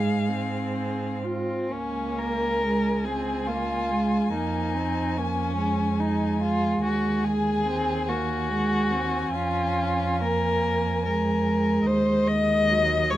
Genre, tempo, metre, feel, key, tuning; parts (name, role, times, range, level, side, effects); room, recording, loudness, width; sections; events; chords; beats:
classical, slow romantic movement for string quartet; 71 BPM; 3/4; uneven beats, rubato; Db major; A4 = 442 Hz
rich violin; melody; 0.0-13.2 s; Eb5 to Ab5; -33 LUFS; left 6 dB
warm violin; second line; 0.0-13.2 s; C4 to Eb5; -26 LUFS; left 1 dB
warm viola; accompaniment; 0.0-13.2 s; Gb3 to F4; -27 LUFS; right 1 dB
rich cello; bass; 0.0-13.2 s; Db2 to Ab2; -30 LUFS; right 3 dB
moderate studio reverb, RT60 0.5 s; -22 LUFS; side -14 dB against mid
0.0-1.7 A section; 1.7-13.2 B section
0.0 Db/Ab (rootless); 0.8 Ab; 1.7 Db; 4.3 Db/F; 6.8 Ab5/Eb; 9.3 Db/F; 11.9 Ab/Eb
0.77 | 1.72 2.62 3.47 | 4.32 5.17 6.00 | 6.83 7.67 8.49 | 9.32 10.21 11.04 | 11.85 12.68